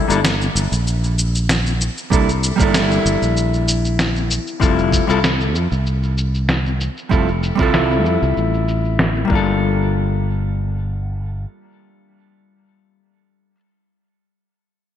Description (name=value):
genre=sunset chillout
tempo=96 BPM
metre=4/4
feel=straight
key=G dorian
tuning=A4 = 440 Hz
part: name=hollow-body jazz guitar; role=accompaniment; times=0.0-13.6 s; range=G3 to A4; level=-20 LUFS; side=moving between left 6 dB and right 5 dB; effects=auto-pan, ping-pong delay
part: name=sustaining fretless electric bass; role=bass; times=0.1-11.4 s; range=F1 to F2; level=-19 LUFS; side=equal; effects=none
part: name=electronic shaker and snare drum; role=drums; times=0.1-9.3 s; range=none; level=-22 LUFS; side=equal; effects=overdrive, low-pass filter on perc, low-pass filter on snare, gated reverb
part: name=electronic kick drum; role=drums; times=2.1-9.4 s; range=none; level=-19 LUFS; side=equal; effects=overdrive
room=moderate plate reverb, RT60 3.2 s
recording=bright 1980s-style digital production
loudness=-15 LUFS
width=side -10 dB against mid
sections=0.0-9.6 A section; 9.6-12.1 B section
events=filter sweep on drum 0.0-9.6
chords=0.0 C13 (rootless); 4.6 Fmaj9; 9.3 Gm9